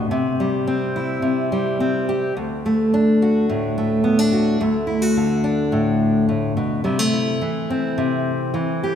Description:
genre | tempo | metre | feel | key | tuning
folk | 107 BPM | 4/4 | straight | D mixolydian | A4 = 439 Hz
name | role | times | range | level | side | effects
fingerpicked steel-string acoustic guitar | solo | 0.0-8.9 s | D2 to G4 | -18 LUFS | left 1 dB | none
room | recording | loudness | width
wet concert hall reverb, RT60 2.1 s | recorded in a church or concert hall | -18 LUFS | side -8 dB against mid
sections
0.0-4.6 A section; 4.6-8.9 B section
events
none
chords
0.1 C; 2.4 D; 6.8 Am/C

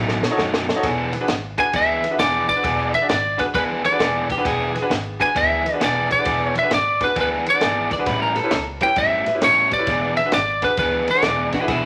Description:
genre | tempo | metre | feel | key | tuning
electric blues shuffle | 133 BPM | 4/4 | swing 66% on 8ths | E mixolydian | A4 = 440 Hz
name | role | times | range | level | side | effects
overdriven semi-hollow guitar | riff | 0.0-11.9 s | A2 to G#4 | -27 LUFS | equal | none
upright bass | bass | 0.0-11.9 s | E1 to F#2 | -34 LUFS | equal | none
compact cocktail drum kit | drums | 0.1-11.8 s | kick drum, ride cymbal, snare drum | -29 LUFS | equal | none
bright upright piano | accompaniment | 0.2-11.7 s | C#4 to D5 | -29 LUFS | equal | none
lightly driven lead guitar | melody | 1.6-11.5 s | B4 to G#5 | -21 LUFS | equal | none
electric guitar at the edge of break-up | second line | 4.3-4.9, 7.9-8.7, 11.5-11.8 s | E4 to D5 | -27 LUFS | equal | spring reverb
room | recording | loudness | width
moderate large studio reverb, RT60 0.8 s | vinyl crackle | -20 LUFS | mono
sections
0.8-11.9 A section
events
drum fill 0.0-0.8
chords
0.0 B7; 0.8 E7; 8.1 A7; 9.9 E7

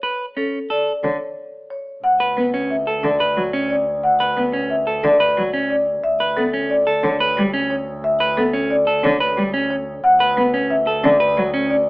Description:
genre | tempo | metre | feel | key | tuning
classical, minimalist pattern music | 180 BPM | 6/4 | straight | D major | A4 = 439 Hz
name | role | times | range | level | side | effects
clean electric guitar | arpeggios | 0.0-11.8 s | C#4 to B4 | -21 LUFS | right 1 dB | none
marimba with medium hard mallets | melody | 0.4-11.9 s | A4 to F#5 | -19 LUFS | left 1 dB | none
rich cello | accompaniment | 1.0-11.5 s | D3 to B3 | -21 LUFS | equal | none
warm double bass | bass | 2.0-11.9 s | D2 | -32 LUFS | right 1 dB | none
room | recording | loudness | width
moderate large studio reverb, RT60 1.0 s | AM radio sound | -16 LUFS | side -23 dB against mid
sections
0.0-2.0 A section; 2.0-11.9 A section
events
none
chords
0.0 Bm9; 2.0 Dmaj7(no3); 6.0 G/D (rootless); 10.0 Dmaj7(no3)

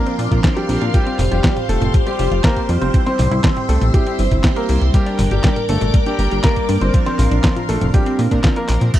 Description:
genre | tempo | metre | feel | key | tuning
italo disco | 120 BPM | 4/4 | straight | unclear | A4 = 439 Hz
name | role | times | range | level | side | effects
clear baby grand piano | melody | 0.0-8.8 s | G3 to C5 | -24 LUFS | equal | tape echo
phased string machine | sustained chords | 0.0-8.9 s | G4 to D6 | -24 LUFS | left 1 dB | ensemble chorus, phaser, vintage 12-bit sampler grit
analog pluck | arpeggios | 0.0-8.9 s | E3 to Bb4 | -28 LUFS | left 2 dB | chorus, phaser, tape echo
chorused polysynth | stabs | 0.0-9.0 s | F3 to C5 | -24 LUFS | right 2 dB | none
detuned 8-bit digital drum machine | drums | 0.1-9.0 s | crash cymbal, handclaps, hi-hat, snare drum, toms | -22 LUFS | equal | overdrive
chorused synth bass | bass | 0.2-8.9 s | F1 to Bb2 | -17 LUFS | equal | none
electronic kick drum | drums | 0.3-9.0 s | none | -16 LUFS | equal | overdrive
room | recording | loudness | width
digital ambience | dry, close 1970s-style studio recording | -14 LUFS | side -13 dB against mid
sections
0.0-8.9 A section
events
drum fill 8.7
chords
0.0 Bbadd9; 0.9 Fsus2; 2.9 C; 4.9 Gm; 6.9 Bbadd9

